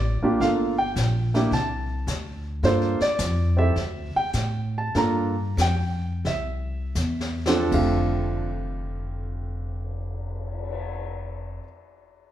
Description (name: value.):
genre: jazz piano trio.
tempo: 76-108 BPM.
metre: 4/4.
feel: swing 68% on 8ths.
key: F major.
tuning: A4 = 438 Hz.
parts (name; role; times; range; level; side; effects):
warm grand piano; melody; 0.0-11.6 s; F2 to Bb5; -24 LUFS; right 2 dB; none.
upright bass; bass; 0.0-11.6 s; F1 to A2; -26 LUFS; equal; none.
jazz brush drum kit; drums; 0.4-10.7 s; brushed snare drum, crash cymbal, cymbal swell, hi-hat, kick drum, snare drum; -34 LUFS; left 3 dB; none.
room: wet large studio reverb, RT60 1.2 s.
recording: heard from further back in the room.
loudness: -22 LUFS.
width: side -12 dB against mid.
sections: 0.0-7.7 A section; 7.7-10.9 B section.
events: slowing down 2.6-7.7; drum fill 7.0-7.7.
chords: 0.4 Gm7; 1.5 Csus2; 2.6 Gm7; 3.8 Dsus4; 4.9 Gm7; 6.2 C; 7.7 F69.